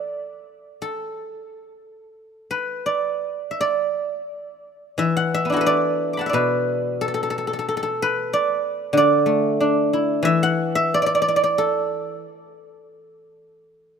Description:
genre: chinese traditional, Chinese solo plucked strings.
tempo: 89 BPM.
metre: 4/4.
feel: uneven beats, rubato.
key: A zhi mode.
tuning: A4 = 440 Hz.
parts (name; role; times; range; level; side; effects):
guzheng; solo; 0.0-13.8 s; B2 to D6; -19 LUFS; equal; none.
room: light reverb, small room ambience.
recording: rough home demo mix.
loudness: -19 LUFS.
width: side -6 dB against mid.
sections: 0.0-3.6 A section; 3.6-14.0 B section.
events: none.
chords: none.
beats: 0.17 | 0.83 1.51 2.19 2.88 | 3.59 4.29 4.99 5.67 | 6.35 7.02 7.67 8.32 | 8.96 9.61 10.26 10.92 | 11.58 12.24 12.91 13.61.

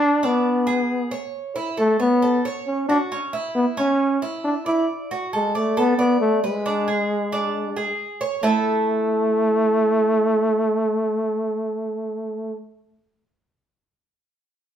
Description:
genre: latin.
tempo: 135 BPM.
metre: 4/4.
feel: straight.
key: A major.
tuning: A4 = 438 Hz.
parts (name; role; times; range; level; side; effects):
warm trombone; melody; 0.0-12.6 s; G#3 to E4; -20 LUFS; equal; none.
Cuban tres; arpeggios; 0.0-12.6 s; A3 to D5; -26 LUFS; right 2 dB; none.
room: moderate large studio reverb, RT60 0.9 s.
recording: band playing live in one room.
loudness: -19 LUFS.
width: side -9 dB against mid.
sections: 0.0-8.4 A section; 8.4-12.0 B section.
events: none.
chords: 0.0 Bm69; 1.3 A; 3.1 Bsus4 (rootless); 4.9 Bm7; 6.7 G#sus4; 8.4 A5.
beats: 0.01 0.45 0.89 | 1.34 1.78 2.22 2.67 | 3.11 3.55 4.00 4.44 | 4.88 5.33 5.77 6.21 | 6.66 7.10 7.55 7.99 | 8.43 8.88 9.32 9.77 | 10.21 10.65 11.10 11.54.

